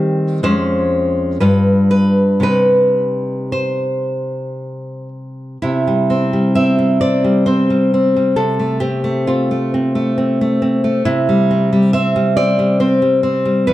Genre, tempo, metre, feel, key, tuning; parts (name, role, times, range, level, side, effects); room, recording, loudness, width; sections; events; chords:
romantic piece for solo classical guitar; 55-70 BPM; 3/4; rubato; C minor, C major from 5.6 s; A4 = 442 Hz
nylon-string guitar; solo; 0.0-13.7 s; E2 to E5; -13 LUFS; equal
moderate recital hall reverb, RT60 1.4 s; dark, warm production; -13 LUFS; side -14 dB against mid
0.0-5.6 A section; 5.6-13.7 B section
0.4 Db/F; 1.4 G7; 2.5 Cm; 5.6 C; 8.4 F/C; 11.1 C